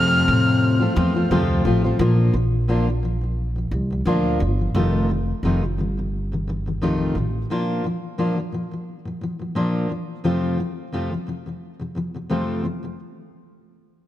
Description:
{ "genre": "acoustic pop", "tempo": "87 BPM", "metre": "4/4", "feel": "swing 55% on 16ths", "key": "F major", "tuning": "A4 = 441 Hz", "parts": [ { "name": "warm erhu", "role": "melody", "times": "0.0-1.3 s", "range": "F6", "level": "-22 LUFS", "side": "equal", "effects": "ping-pong delay" }, { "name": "fingerpicked steel-string acoustic guitar", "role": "accompaniment", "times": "0.0-13.0 s", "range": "F2 to F4", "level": "-22 LUFS", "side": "left 1 dB", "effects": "none" }, { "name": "upright bass", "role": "bass", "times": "0.0-7.4 s", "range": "F1 to A2", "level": "-22 LUFS", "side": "right 1 dB", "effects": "none" } ], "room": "light reverb, small room reverb", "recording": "none", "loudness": "-20 LUFS", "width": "side -13 dB against mid", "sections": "0.0-2.0 A section; 2.0-13.0 B section", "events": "none", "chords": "0.0 F; 2.0 Bb; 4.7 F7; 7.5 Bb; 10.2 F" }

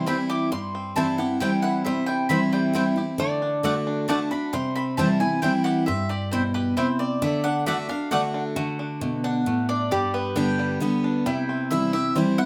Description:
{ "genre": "bluegrass", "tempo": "134 BPM", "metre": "3/4", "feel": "straight", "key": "unclear", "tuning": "A4 = 440 Hz", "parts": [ { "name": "bluegrass banjo", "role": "melody", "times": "0.0-12.5 s", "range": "G3 to G4", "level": "-35 LUFS", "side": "equal", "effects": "none" }, { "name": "mandolin", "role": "melody", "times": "0.0-8.4 s", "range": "B4 to D6", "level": "-31 LUFS", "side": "equal", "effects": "none" }, { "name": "lap resonator guitar", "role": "second line", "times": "0.0-12.5 s", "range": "E4 to D5", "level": "-34 LUFS", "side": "equal", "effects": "none" }, { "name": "picked steel-string acoustic guitar", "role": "accompaniment", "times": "0.0-12.5 s", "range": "G2 to G4", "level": "-26 LUFS", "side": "equal", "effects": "none" }, { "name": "mandolin", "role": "stabs", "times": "0.1-12.5 s", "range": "A3 to G5", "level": "-30 LUFS", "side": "equal", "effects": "none" } ], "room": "light reverb", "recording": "close, detailed microphones", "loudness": "-24 LUFS", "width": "mono", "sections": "0.0-8.6 A section; 8.6-12.5 A section", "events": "mandolin solo 0.0-8.6, 8.6-12.5", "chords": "0.0 C; 3.2 D; 4.5 C; 7.2 D; 9.9 G; 11.3 C" }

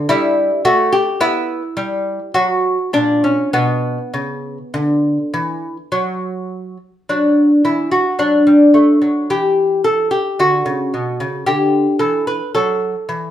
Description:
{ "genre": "classical, baroque-style dance for lute", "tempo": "49-56 BPM", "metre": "3/4", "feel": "rubato", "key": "B minor, D major from 7.1 s", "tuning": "A4 = 439 Hz", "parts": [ { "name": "lute", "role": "solo", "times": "0.0-13.3 s", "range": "A#2 to B4", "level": "-14 LUFS", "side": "equal", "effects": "none" } ], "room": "moderate studio reverb, RT60 0.7 s", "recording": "band playing live in one room", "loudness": "-14 LUFS", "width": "side -11 dB against mid", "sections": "0.0-7.1 A section; 7.1-13.3 A section", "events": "none", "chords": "0.1 Gmaj13; 2.4 F#; 3.5 Bm; 7.1 D; 9.3 N.C.; 10.4 D" }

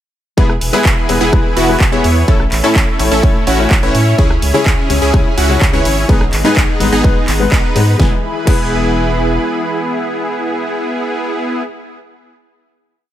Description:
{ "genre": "EDM, festival progressive house", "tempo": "126 BPM", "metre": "4/4", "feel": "straight", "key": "E major", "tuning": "A4 = 441 Hz", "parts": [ { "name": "clear concert grand piano", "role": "accompaniment", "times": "0.4-11.6 s", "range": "G#2 to C#5", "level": "-19 LUFS", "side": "left 5 dB", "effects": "sidechain pumping, digital delay" }, { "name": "lush unison pad", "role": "sustained chords", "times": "0.4-11.2 s", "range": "C#3 to B4", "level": "-22 LUFS", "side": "equal", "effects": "chorus, sidechain pumping" }, { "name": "supersaw stab", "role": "riff", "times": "0.4-11.6 s", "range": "B3 to C#5", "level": "-17 LUFS", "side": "right 1 dB", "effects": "sidechain pumping, digital delay" }, { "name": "saturated sub bass", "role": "bass", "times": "0.4-9.4 s", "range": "E1 to A2", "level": "-17 LUFS", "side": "equal", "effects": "sidechain pumping" }, { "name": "electronic kick drum", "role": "drums", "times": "0.4-8.6 s", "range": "none", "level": "-13 LUFS", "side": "equal", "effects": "none" }, { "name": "big-room dance drum kit", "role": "drums", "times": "0.5-8.6 s", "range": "crash cymbal, handclaps, hi-hat, rim click, snare drum", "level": "-20 LUFS", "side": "right 1 dB", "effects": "none" } ], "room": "digital ambience", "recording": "none", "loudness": "-11 LUFS", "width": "side -12 dB against mid", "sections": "0.4-8.0 drop; 8.0-11.8 final chord", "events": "drop 0.4-8.0", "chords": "0.4 E; 2.3 A; 4.2 C#m; 6.1 G#m; 8.0 E" }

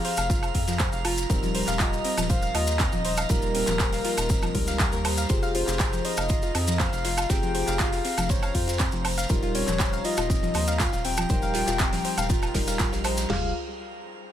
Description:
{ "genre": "progressive house", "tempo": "120 BPM", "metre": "4/4", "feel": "straight", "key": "F minor", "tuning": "A4 = 440 Hz", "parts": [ { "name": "soft octave-layered synth lead", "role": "melody", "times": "0.0-13.5 s", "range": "Bb4 to G5", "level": "-31 LUFS", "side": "left 2 dB", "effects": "chorus, cassette tape, sidechain pumping, dub echo" }, { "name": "soft round pluck", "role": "arpeggios", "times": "0.0-13.5 s", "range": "F3 to F5", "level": "-31 LUFS", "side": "left 1 dB", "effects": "chorus, sidechain pumping, digital delay" }, { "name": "felt-muted upright piano", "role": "stabs", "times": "0.0-13.5 s", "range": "G3 to Bb4", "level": "-33 LUFS", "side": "left 1 dB", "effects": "vintage 12-bit sampler grit, sidechain pumping, digital delay" }, { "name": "deep house drum kit", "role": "drums", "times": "0.0-13.3 s", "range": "handclaps, hi-hat, woodblock", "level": "-31 LUFS", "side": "right 1 dB", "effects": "overdrive, sidechain pumping on hats, sidechain pumping on perc, sidechain pumping on toms, sidechain pumping on cymbals" }, { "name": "drifting glass-harmonics texture", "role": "texture", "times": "0.0-13.3 s", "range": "Bb5", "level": "-38 LUFS", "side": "right 6 dB", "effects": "chorus, built-in reverb, sidechain pumping" }, { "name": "modern studio drum kit", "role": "drums", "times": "0.1-13.3 s", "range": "hi-hat, snare drum", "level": "-38 LUFS", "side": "right 4 dB", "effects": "none" }, { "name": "round analog bass", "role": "bass", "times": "0.2-13.5 s", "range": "Eb1 to F2", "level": "-31 LUFS", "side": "equal", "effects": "sidechain pumping" }, { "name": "maracas", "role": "percussion", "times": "0.2-13.3 s", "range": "none", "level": "-36 LUFS", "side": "left 2 dB", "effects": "none" }, { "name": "pop drum kit", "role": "drums", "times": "0.3-13.4 s", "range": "crash cymbal, kick drum, snare drum, toms", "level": "-27 LUFS", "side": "equal", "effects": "none" } ], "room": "little or no reverb", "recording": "none", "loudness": "-22 LUFS", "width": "side -11 dB against mid", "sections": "0.0-13.3 A section; 13.3-14.3 B section", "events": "drop 0.0-13.3", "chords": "0.0 Fmadd9; 1.3 Eb; 5.3 Fmadd9; 9.3 Eb; 13.3 Fmadd9" }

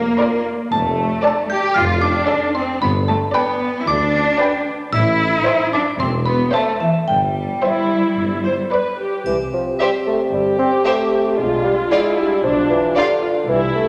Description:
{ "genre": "cinematic, playful, whimsical film cue", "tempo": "113 BPM", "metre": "4/4", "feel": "straight", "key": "C major", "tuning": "A4 = 441 Hz", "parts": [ { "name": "xylophone with plastic mallets", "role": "melody", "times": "0.0-8.7 s", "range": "E5 to G6", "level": "-25 LUFS", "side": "equal", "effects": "none" }, { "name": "mellow tuba", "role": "bass", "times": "0.0-8.6 s", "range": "E1 to D2", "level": "-28 LUFS", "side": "equal", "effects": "none" }, { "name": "warm studio cello section", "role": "bass", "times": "0.0-13.9 s", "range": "C2 to G4", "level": "-23 LUFS", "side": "equal", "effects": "none" }, { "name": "warm studio double bass section", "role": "bass", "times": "0.0-13.9 s", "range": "E1 to D2", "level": "-29 LUFS", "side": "equal", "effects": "none" }, { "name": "warm studio violin section", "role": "melody", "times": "0.2-13.1 s", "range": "D5 to A5", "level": "-29 LUFS", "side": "equal", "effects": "none" }, { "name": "rich studio violin section", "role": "second line", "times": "0.2-13.0 s", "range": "F4 to D5", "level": "-25 LUFS", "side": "equal", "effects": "none" }, { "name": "warm studio viola section", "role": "accompaniment", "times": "0.2-13.9 s", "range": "D4 to C5", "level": "-26 LUFS", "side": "equal", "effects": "none" }, { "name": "mellow bassoon", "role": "accompaniment", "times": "9.3-13.9 s", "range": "D3 to C4", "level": "-21 LUFS", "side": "equal", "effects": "none" }, { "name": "mellow French horn section", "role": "sustained chords", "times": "9.3-13.9 s", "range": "C4 to G4", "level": "-25 LUFS", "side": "equal", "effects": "none" }, { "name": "triangle", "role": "percussion", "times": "9.3-10.3 s", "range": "none", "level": "-46 LUFS", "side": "equal", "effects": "none" } ], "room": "wet scoring stage reverb, RT60 1.9 s", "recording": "none", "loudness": "-18 LUFS", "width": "mono", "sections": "0.0-9.3 A section; 9.3-13.9 B section", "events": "none", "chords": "0.0 Bb; 0.7 Dm/F; 2.8 G; 4.9 Am; 7.1 C/G; 8.2 G; 9.3 C5; 11.4 Bdim" }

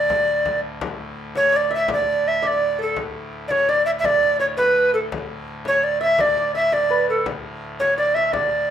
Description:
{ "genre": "medieval dance", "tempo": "112 BPM (dotted quarters)", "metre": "6/8", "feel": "straight", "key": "unclear", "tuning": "A4 = 440 Hz", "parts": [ { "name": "breathy tenor recorder", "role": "melody", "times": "0.0-8.7 s", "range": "A4 to E5", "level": "-18 LUFS", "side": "right 1 dB", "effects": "plate reverb" }, { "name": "lute", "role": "second line", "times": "0.0-8.7 s", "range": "A4 to E5", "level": "-28 LUFS", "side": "right 1 dB", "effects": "slapback echo, plate reverb" }, { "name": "pipe organ, trumpet", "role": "drone", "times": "0.0-8.7 s", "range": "D2 to A2", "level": "-33 LUFS", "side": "left 1 dB", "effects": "none" }, { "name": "frame drum", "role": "percussion", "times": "0.1-8.6 s", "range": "none", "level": "-32 LUFS", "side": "left 6 dB", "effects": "none" } ], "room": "wet studio reverb, RT60 0.6 s", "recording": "rough home demo mix", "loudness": "-17 LUFS", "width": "side -9 dB against mid", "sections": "0.8-8.7 A section", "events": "none", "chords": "none" }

